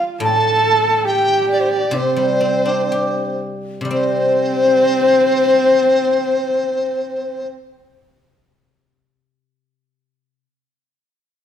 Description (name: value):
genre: chinese traditional, Chinese chamber ensemble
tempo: 57-76 BPM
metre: 4/4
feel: rubato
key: unclear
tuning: A4 = 440 Hz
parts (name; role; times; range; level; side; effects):
- mellow hollow large dizi; melody; 0.0-7.5 s; C5 to A5; -18 LUFS; equal; none
- mellow hollow low xiao; second line; 0.0-7.4 s; C5 to A5; -20 LUFS; left 6 dB; none
- guzheng; accompaniment; 0.0-10.4 s; A2 to G4; -23 LUFS; left 1 dB; none
- dark horsehead fiddle; second line; 0.2-7.5 s; C4 to A4; -21 LUFS; right 5 dB; none
room: moderate recital hall reverb, RT60 1.4 s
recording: none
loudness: -14 LUFS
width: side -9 dB against mid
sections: 0.0-3.9 A section; 3.9-8.1 B section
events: slowing down 0.0-3.9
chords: none